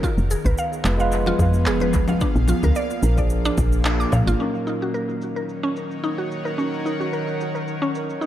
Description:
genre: organic downtempo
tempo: 110 BPM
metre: 4/4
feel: swing 54% on 16ths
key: Eb minor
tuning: A4 = 439 Hz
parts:
  - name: tine electric piano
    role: accompaniment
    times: 0.0-8.3 s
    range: F3 to Cb5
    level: -29 LUFS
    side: right 2 dB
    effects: medium stereo tremolo, sidechain pumping, dub echo
  - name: bowed-like drone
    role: sustained chords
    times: 0.0-8.3 s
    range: Bb2 to Gb5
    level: -28 LUFS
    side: right 1 dB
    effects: built-in reverb, sidechain pumping
  - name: mallet-like synth pluck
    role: arpeggios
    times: 0.0-8.3 s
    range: Db4 to D6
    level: -26 LUFS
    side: equal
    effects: chorus, cassette tape, analog delay
  - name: electronic kick drum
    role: drums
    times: 0.0-3.7 s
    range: none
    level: -25 LUFS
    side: equal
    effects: overdrive, studio reverb
  - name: electronic shaker, handclaps and congas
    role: drums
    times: 0.0-8.3 s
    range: none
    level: -28 LUFS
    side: left 2 dB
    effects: overdrive, low-pass filter on perc, studio reverb, low-pass filter on snare, dub echo
  - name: woody FM bass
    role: bass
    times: 0.2-4.4 s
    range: F1 to Bb2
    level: -20 LUFS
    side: equal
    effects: none
  - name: udu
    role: percussion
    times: 0.4-4.2 s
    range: none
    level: -28 LUFS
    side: equal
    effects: none
room: light reverb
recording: echo-heavy mix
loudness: -19 LUFS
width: side -12 dB against mid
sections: 0.0-4.4 A section; 4.4-8.3 B section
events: kick drops out 3.9-4.4; band accent 3.9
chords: 0.0 Fdim; 2.2 Bb; 4.4 Ebm7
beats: | 0.03 0.58 1.12 1.67 | 2.21 2.76 3.31 3.85 | 4.40 4.94 5.49 6.03 | 6.58 7.12 7.67 8.21

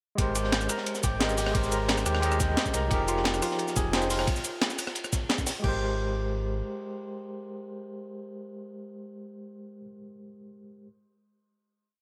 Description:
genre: liquid drum and bass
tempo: 176 BPM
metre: 4/4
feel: straight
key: Ab major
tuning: A4 = 440 Hz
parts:
  - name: overdriven tine electric piano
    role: accompaniment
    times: 0.2-10.9 s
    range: F3 to G5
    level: -35 LUFS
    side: equal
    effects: medium tremolo, delay
  - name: sub bass with octave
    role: bass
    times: 0.2-6.6 s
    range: F1 to Eb2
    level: -34 LUFS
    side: equal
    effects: none
  - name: breakbeat sampler-style drum kit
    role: drums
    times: 0.2-5.7 s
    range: cabasa, crash cymbal, hi-hat, rim click, snare drum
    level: -32 LUFS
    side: equal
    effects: none
  - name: crunchy breakbeat drum kit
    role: drums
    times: 0.2-5.6 s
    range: hi-hat, ride cymbal, snare drum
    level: -38 LUFS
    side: equal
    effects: high-pass filter on cymbals, high-pass filter on hats, high-pass filter on snare, high-pass filter on room
  - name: electronic kick drum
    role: drums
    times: 0.2-5.7 s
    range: none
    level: -32 LUFS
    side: equal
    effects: none
  - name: concert harp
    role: arpeggios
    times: 0.4-8.0 s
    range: F4 to Bb4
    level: -38 LUFS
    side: equal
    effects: delay
room: light reverb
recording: none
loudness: -28 LUFS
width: mono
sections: 0.2-5.6 drop; 5.6-8.4 final chord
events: drop 0.2-5.6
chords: 0.2 Abmaj9; 2.9 Fm11; 4.3 N.C.; 5.6 Abmaj9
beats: | 0.18 0.52 0.86 1.21 | 1.55 1.89 2.23 2.57 | 2.91 3.25 3.59 3.93 | 4.27 4.62 4.96 5.30 | 5.64 5.98 6.32 6.66 | 7.00 7.34 7.68 8.02

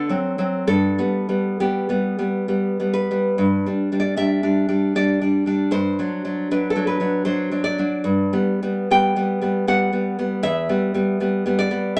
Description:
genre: romantic piece for solo classical guitar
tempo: 65-80 BPM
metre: 3/4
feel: rubato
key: G major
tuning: A4 = 440 Hz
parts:
  - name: nylon-string guitar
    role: solo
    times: 0.0-12.0 s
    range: E2 to G5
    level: -21 LUFS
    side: equal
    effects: none
room: moderate studio reverb, RT60 0.6 s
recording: none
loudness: -21 LUFS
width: mono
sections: 0.0-3.4 A section; 3.4-12.0 A section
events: none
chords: 0.0 D7; 0.7 G; 3.4 G5; 5.7 D7/G; 8.1 G; 10.4 Em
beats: | 0.71 1.62 2.51 | 3.40 4.19 4.96 | 5.73 6.50 7.27 | 8.07 8.92 9.69 | 10.45 11.20 11.96

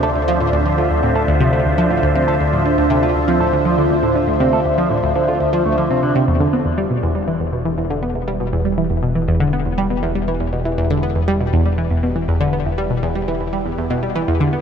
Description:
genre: ambient, sequencer-driven space music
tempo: 120 BPM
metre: 4/4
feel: straight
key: unclear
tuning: A4 = 440 Hz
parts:
  - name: phased analog pad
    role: sustained chords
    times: 0.0-14.6 s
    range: D3 to E5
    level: -21 LUFS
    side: right 1 dB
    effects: phaser, chorus
  - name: electric guitar with an envelope filter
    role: arpeggios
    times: 0.0-6.1 s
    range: D3 to A4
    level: -24 LUFS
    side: right 2 dB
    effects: auto-pan, ping-pong delay
  - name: analog pluck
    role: riff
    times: 0.0-14.6 s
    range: D2 to B3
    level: -18 LUFS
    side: equal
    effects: chorus, phaser, ping-pong delay
  - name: fat analog bass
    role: bass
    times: 0.0-14.6 s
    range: E1 to D2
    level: -25 LUFS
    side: equal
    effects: none
  - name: wind-like tuned noise texture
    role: texture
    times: 0.0-6.3 s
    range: D4 to D5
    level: -28 LUFS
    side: equal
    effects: none
room: wet huge ambient reverb, RT60 7.5 s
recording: none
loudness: -15 LUFS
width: side -7 dB against mid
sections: 0.0-6.3 A section; 6.3-14.6 B section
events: fade-in on analog synth pad 6.3-14.6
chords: 0.0 Dm7; 6.3 Em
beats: | 0.28 0.78 1.28 1.78 | 2.28 2.78 3.28 3.78 | 4.28 4.78 5.28 5.78 | 6.28 6.78 7.28 7.78 | 8.28 8.78 9.28 9.78 | 10.28 10.78 11.28 11.78 | 12.28 12.78 13.28 13.78 | 14.28

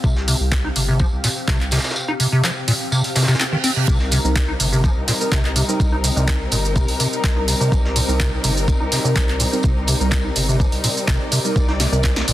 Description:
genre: acid house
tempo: 125 BPM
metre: 4/4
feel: straight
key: C minor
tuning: A4 = 439 Hz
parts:
  - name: acid bass, square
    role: riff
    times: 0.0-12.3 s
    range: Bb2 to Eb4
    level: -22 LUFS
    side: equal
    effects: lush chorus, cassette tape
  - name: saturated sub bass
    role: bass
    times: 0.0-12.3 s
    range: G1 to C2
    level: -23 LUFS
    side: equal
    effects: sidechain pumping
  - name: electronic kick drum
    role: drums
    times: 0.0-12.1 s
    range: none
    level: -19 LUFS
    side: equal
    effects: none
  - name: vintage brush drum kit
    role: drums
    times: 0.0-12.3 s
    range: hi-hat, snare drum, tambourine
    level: -30 LUFS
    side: equal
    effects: high-pass filter on hats, high-pass filter on snare, high-pass filter on perc, high-pass filter on room
  - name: granular cloud pad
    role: texture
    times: 0.0-12.3 s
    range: C4 to F5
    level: -30 LUFS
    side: left 1 dB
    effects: built-in reverb, sidechain pumping
  - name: punchy analog drum machine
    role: drums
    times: 0.3-12.3 s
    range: handclaps, hi-hat, shaker, snare drum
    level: -22 LUFS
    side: right 1 dB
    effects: none
  - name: reverse cymbal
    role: sound effects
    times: 3.1-3.9 s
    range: none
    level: -29 LUFS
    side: right 8 dB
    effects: none
  - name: dark studio string section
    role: sustained chords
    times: 3.9-12.3 s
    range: G3 to D5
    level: -26 LUFS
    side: left 2 dB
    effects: sidechain pumping
  - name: deep mellow chord stab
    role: stabs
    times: 4.2-12.0 s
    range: G3 to Bb4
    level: -26 LUFS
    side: right 2 dB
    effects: chorus, dub echo
room: light reverb, small room ambience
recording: dense, heavily limited modern master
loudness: -16 LUFS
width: side -14 dB against mid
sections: 0.0-12.3 A section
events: filter sweep on acid bass 0.0-12.3; reverse cymbal 3.1-3.9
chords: 0.0 Cm7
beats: | 0.04 0.52 1.00 1.48 | 1.96 2.44 2.92 3.40 | 3.88 4.36 4.84 5.32 | 5.80 6.28 6.76 7.24 | 7.72 8.20 8.68 9.16 | 9.64 10.12 10.60 11.08 | 11.56 12.04

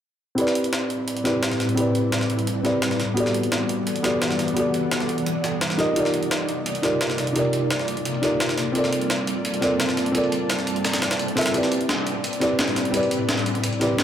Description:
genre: liquid drum and bass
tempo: 172 BPM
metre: 4/4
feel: straight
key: A minor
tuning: A4 = 438 Hz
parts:
  - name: felt-muted upright piano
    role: accompaniment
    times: 0.3-14.0 s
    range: B3 to E5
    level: -23 LUFS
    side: equal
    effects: low-pass filter, digital delay
  - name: ethereal airy pad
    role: sustained chords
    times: 0.9-14.0 s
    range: A2 to A5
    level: -27 LUFS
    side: equal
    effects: ensemble chorus, built-in reverb, tremolo
  - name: breakbeat sampler-style drum kit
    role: drums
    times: 0.4-14.0 s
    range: hi-hat, snare drum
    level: -32 LUFS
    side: equal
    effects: low-pass filter on hats, low-pass filter on snare, low-pass filter on room
  - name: jungle sampler-style drum kit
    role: drums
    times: 0.4-14.0 s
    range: hi-hat, snare drum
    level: -27 LUFS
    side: equal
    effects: high-pass filter on hats, high-pass filter on snare, high-pass filter on room
room: light reverb, digital ambience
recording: none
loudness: -20 LUFS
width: side -9 dB against mid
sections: 0.4-14.0 A section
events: filter sweep on drum 0.4-14.0; filter sweep on felt piano 0.4-14.0; filter sweep on ambient pad 0.4-14.0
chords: 0.4 Am11; 3.0 Em11; 5.8 Cm11; 8.8 Gm11; 11.5 Am11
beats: | 0.38 0.73 1.08 1.43 | 1.78 2.12 2.47 2.82 | 3.17 3.52 3.87 4.22 | 4.57 4.92 5.26 5.61 | 5.96 6.31 6.66 7.01 | 7.36 7.71 8.05 8.40 | 8.75 9.10 9.45 9.80 | 10.15 10.50 10.85 11.20 | 11.54 11.89 12.24 12.59 | 12.94 13.29 13.64 13.98

